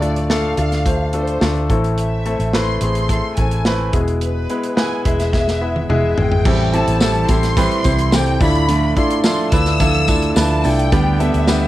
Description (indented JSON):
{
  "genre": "piano-driven pop",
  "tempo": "107 BPM",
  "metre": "4/4",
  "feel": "straight",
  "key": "A minor from 6.5 s",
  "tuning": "A4 = 441 Hz",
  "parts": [
    { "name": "warm studio violin section", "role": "melody", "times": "0.0-11.7 s", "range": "B4 to E6", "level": "-24 LUFS", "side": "left 1 dB", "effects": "cassette tape" },
    { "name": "clear concert grand piano", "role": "accompaniment", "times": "0.0-11.7 s", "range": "A2 to C5", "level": "-20 LUFS", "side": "left 2 dB", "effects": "cassette tape" },
    { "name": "vintage muted fingered electric bass", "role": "bass", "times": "0.0-11.7 s", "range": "E1 to D2", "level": "-19 LUFS", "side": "equal", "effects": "none" },
    { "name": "modern studio drum kit", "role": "drums", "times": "0.0-11.6 s", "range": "crash cymbal, hi-hat, kick drum, snare drum, toms", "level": "-20 LUFS", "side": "equal", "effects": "cassette tape" },
    { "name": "fingerpicked steel-string acoustic guitar", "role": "riff", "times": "6.5-11.7 s", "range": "A2 to G4", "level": "-21 LUFS", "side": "right 5 dB", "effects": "cassette tape" },
    { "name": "tambourine", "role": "percussion", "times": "7.0-11.6 s", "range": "none", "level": "-32 LUFS", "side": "left 7 dB", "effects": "none" }
  ],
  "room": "light reverb",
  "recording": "home recording on cassette",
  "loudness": "-14 LUFS",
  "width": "side -15 dB against mid",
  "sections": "0.0-6.5 A section; 6.5-11.7 B section",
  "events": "drum fill 5.3-6.5",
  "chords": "0.0 Dm; 1.7 Am; 3.9 E; 6.5 Am7; 8.4 Dmadd9; 10.9 G/D"
}